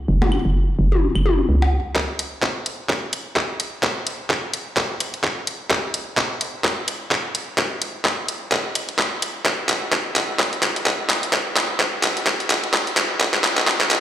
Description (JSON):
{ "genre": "minimal techno", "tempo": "128 BPM", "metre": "4/4", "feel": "swing 57% on 16ths", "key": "unclear", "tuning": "A4 = 440 Hz", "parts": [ { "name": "hollow knocking FM bass", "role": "bass", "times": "0.1-1.8 s", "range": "F#1 to C#2", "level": "-17 LUFS", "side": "equal", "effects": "sidechain pumping" }, { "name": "electronic toms, percussion blips and claves", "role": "percussion", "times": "0.2-1.7 s", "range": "none", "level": "-22 LUFS", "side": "left 2 dB", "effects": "overdrive, digital delay" }, { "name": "electronic kick drum", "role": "drums", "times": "2.0-13.8 s", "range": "none", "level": "-24 LUFS", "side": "equal", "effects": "high-pass filter on kick" }, { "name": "garage drum kit", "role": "drums", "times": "2.0-14.0 s", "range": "handclaps, hi-hat", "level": "-20 LUFS", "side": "equal", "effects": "none" } ], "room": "wet plate reverb, RT60 2.2 s", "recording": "played on a big sound system in a bare room, large studio reverb, high-pass filter", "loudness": "-19 LUFS", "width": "side -11 dB against mid", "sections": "0.0-2.0 A section; 2.0-14.0 B section", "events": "build-up 2.0-14.0; drum fill 2.0-14.0", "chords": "none" }